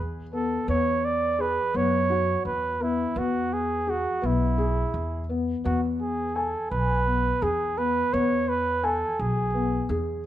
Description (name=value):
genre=contemporary instrumental, contemporary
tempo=169 BPM (eighths)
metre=7/8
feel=straight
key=E major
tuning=A4 = 437 Hz
part: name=mellow flugelhorn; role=melody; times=0.0-9.9 s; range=E4 to D5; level=-26 LUFS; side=right 3 dB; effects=none
part: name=felt-muted upright piano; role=arpeggios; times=0.0-10.2 s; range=B3 to G#5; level=-28 LUFS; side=left 4 dB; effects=none
part: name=upright bass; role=bass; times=0.0-10.3 s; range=B1 to F#2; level=-29 LUFS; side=equal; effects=none
room=light reverb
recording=dark, warm production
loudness=-23 LUFS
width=side -12 dB against mid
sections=0.0-5.6 A section; 5.6-10.3 B section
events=none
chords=0.0 E; 0.7 Bsus2/E; 3.2 E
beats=0.33 | 0.69 1.04 1.39 1.75 2.10 2.46 2.81 | 3.16 3.52 3.87 4.22 4.58 4.93 5.29 | 5.64 6.00 6.35 6.70 7.06 7.41 7.77 | 8.12 8.48 8.83 9.19 9.54 9.89 10.25